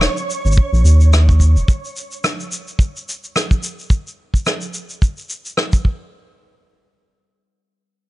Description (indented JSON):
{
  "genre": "folktronica",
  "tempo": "108 BPM",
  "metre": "4/4",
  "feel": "swing 56% on 16ths",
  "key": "unclear",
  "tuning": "A4 = 440 Hz",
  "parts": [
    { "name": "round analog bass", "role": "bass", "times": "0.0-1.6 s", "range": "Eb1 to Eb2", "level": "-10 LUFS", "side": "equal", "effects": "none" },
    { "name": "rim click and shaker", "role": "drums", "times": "0.0-5.8 s", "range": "none", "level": "-22 LUFS", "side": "equal", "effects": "none" },
    { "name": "flickering grainy texture", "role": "texture", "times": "0.0-1.7 s", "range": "Db5 to Db6", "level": "-27 LUFS", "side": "right 4 dB", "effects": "built-in reverb" },
    { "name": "kick drum", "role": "drums", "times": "0.6-6.0 s", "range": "none", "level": "-14 LUFS", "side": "equal", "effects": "none" }
  ],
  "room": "studio ambience",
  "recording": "nothing above 10.4 kHz",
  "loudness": "-14 LUFS",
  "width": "side -17 dB against mid",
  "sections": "0.0-6.1 A section; 6.1-8.1 B section",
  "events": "none",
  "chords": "none",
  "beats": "0.01 0.57 1.13 | 1.68 2.24 2.79 3.35 | 3.90 4.46 5.01 5.57"
}